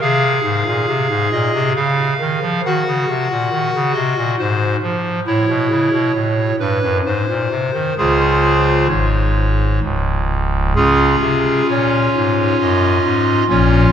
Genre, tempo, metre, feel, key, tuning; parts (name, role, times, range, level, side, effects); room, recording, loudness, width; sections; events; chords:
classical, chorale-style piece for pipe organ; 62-70 BPM; 3/4; rubato; Db major; A4 = 441 Hz
pipe organ, clarinet reed; solo; 0.0-13.9 s; Db1 to Gb5; -14 LUFS; equal
wet church reverb, RT60 3.6 s; dark, warm production; -14 LUFS; side -8 dB against mid
0.0-10.8 A section; 10.8-13.9 B section
0.0 Ab; 1.8 Db; 2.6 Ebm; 4.4 Ab; 5.3 A; 6.2 A7; 7.0 Ab; 8.0 Db